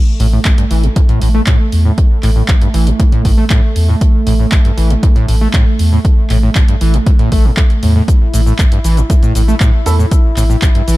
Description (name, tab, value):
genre	acid house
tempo	118 BPM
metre	4/4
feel	straight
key	unclear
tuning	A4 = 439 Hz
part	warm analog pad	sustained chords	0.0-11.0 s	A3 to E4	-22 LUFS	right 3 dB	chorus, sidechain pumping
part	overdriven acid bass	riff	0.2-11.0 s	A1 to A3	-17 LUFS	equal	lush chorus, sidechain pumping, ping-pong delay
part	warm sub bass	bass	0.2-11.0 s	A1 to E2	-12 LUFS	equal	sidechain pumping
part	punchy analog drum machine	drums	0.2-11.0 s	handclaps, hi-hat, shaker	-22 LUFS	equal	none
part	electronic kick drum	drums	0.5-10.7 s	none	-10 LUFS	equal	overdrive
part	warm baby grand piano	stabs	9.9 s	A3 to A4	-21 LUFS	right 4 dB	ping-pong delay
room	digital ambience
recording	dark, warm production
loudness	-9 LUFS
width	side -18 dB against mid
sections	0.0-11.0 A section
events	none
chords	0.0 A5